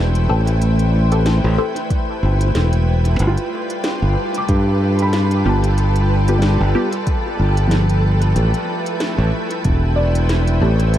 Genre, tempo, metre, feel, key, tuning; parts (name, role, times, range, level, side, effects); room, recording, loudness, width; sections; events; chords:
ambient dub; 93 BPM; 4/4; swing 56% on 16ths; A minor; A4 = 440 Hz
soft additive organ-like pad; sustained chords; 0.0-11.0 s; G3 to G5; -23 LUFS; equal; ensemble chorus, built-in reverb
felt-muted upright piano; arpeggios; 0.0-11.0 s; E3 to D6; -26 LUFS; equal; dub echo
modern bright fingered electric bass; bass; 0.0-11.0 s; E1 to G2; -15 LUFS; equal
organic electronic drum kit; drums; 0.2-11.0 s; hi-hat, snare drum; -26 LUFS; equal; overdrive, dub echo
filtered dub chord stab; stabs; 0.3-10.8 s; B3 to A4; -26 LUFS; left 2 dB; phaser, dub echo
electronic kick drum; drums; 1.9-9.8 s; -19 LUFS; equal; overdrive
wind-like tuned noise texture; texture; 4.0-11.0 s; A4 to A5; -31 LUFS; equal; built-in reverb
little or no reverb; dark, warm production, vinyl crackle; -15 LUFS; side -12 dB against mid
0.0-11.0 A section
0.0 Am7; 3.2 G7; 8.4 Am7